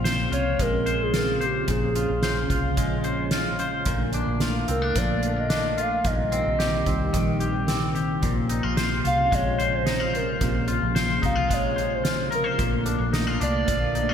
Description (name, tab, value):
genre	dream pop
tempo	110 BPM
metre	4/4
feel	straight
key	unclear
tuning	A4 = 441 Hz
part	string machine, cellos	sustained chords	0.0-14.1 s	C3 to Db4	-29 LUFS	equal	ensemble chorus
part	twangy electric guitar	arpeggios	0.0-14.1 s	Bb2 to C5	-27 LUFS	left 2 dB	lush chorus, digital delay
part	vintage muted fingered electric bass	bass	0.0-14.1 s	Bb1 to C2	-29 LUFS	equal	none
part	soft-mallet drum kit	drums	0.1-14.1 s	hi-hat, kick drum, snare drum	-29 LUFS	right 1 dB	gated reverb
part	warbly nostalgic lead	melody	0.3-14.1 s	G4 to F5	-27 LUFS	equal	chorus, digital delay
room	wet lush hall reverb, RT60 1.8 s, small room ambience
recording	bright 1980s-style digital production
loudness	-21 LUFS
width	side -8 dB against mid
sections	0.0-14.1 A section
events	none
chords	0.0 Dbmaj7/Bb; 3.9 Bbmaj7; 6.0 Eb6/Bb; 8.2 Dbmaj7/Bb; 12.6 Bbmaj7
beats	0.05 0.59 1.14 | 1.68 2.23 2.77 3.32 | 3.87 4.41 4.96 5.50 | 6.05 6.59 7.14 7.68 | 8.23 8.77 9.32 9.87 | 10.41 10.96 11.50 12.05 | 12.59 13.14 13.68